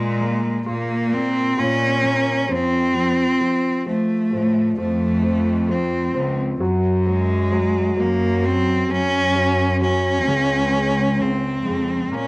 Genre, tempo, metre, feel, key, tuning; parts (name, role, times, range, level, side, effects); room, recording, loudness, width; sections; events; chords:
pop ballad; 66 BPM; 4/4; straight; Bb minor; A4 = 440 Hz
rich cello; melody; 0.0-12.3 s; Ab3 to Db4; -20 LUFS; equal; cassette tape
warm baby grand piano; accompaniment; 0.0-12.3 s; Db3 to F4; -24 LUFS; left 1 dB; cassette tape
rich chamber cello section; bass; 0.0-12.3 s; Db2 to Bb2; -22 LUFS; equal
light reverb, studio reverb; home recording on cassette; -17 LUFS; side -23 dB against mid
0.0-12.3 A section
0.0 Bbm; 2.5 F; 6.6 Gbsus2; 10.3 Db